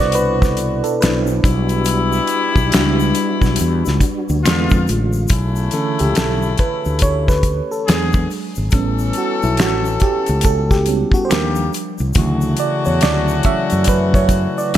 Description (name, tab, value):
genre	R&B, neo-soul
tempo	70 BPM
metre	4/4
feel	swing 61% on 16ths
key	B minor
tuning	A4 = 443 Hz
part	FM electric piano with auto-pan	accompaniment	0.0-14.8 s	B2 to E5	-20 LUFS	right 2 dB	none
part	mellow tonewheel organ	sustained chords	0.0-5.3, 12.2-14.8 s	B2 to F#4	-24 LUFS	equal	slow rotary speaker, chorus vibrato
part	warm horn section	stabs	0.0-14.8 s	B2 to A4	-23 LUFS	left 5 dB	none
part	fretless electric bass	bass	0.0-14.8 s	G#1 to F#2	-19 LUFS	equal	none
part	damped 70s drum kit	drums	0.0-14.8 s	hi-hat, kick drum, snare drum	-18 LUFS	equal	gated reverb
part	egg shaker and finger snaps	percussion	0.2-14.8 s	none	-31 LUFS	left 1 dB	none
room	light reverb, small room ambience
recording	bright 1980s-style digital production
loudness	-14 LUFS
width	side -12 dB against mid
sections	0.0-5.3 A section; 5.3-14.8 B section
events	FM electric piano solo 0.0-5.3, 5.3-14.8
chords	0.0 Cmaj9; 1.4 Em9/B; 4.4 E7b9; 5.3 Bm11; 7.9 E9; 8.7 A7; 11.3 D#maj9; 12.2 Dmaj9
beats	0.15 1.01 | 1.87 2.73 3.58 4.44 | 5.30 6.16 7.01 7.87 | 8.73 9.58 10.44 11.30 | 12.15 13.01 13.87 14.73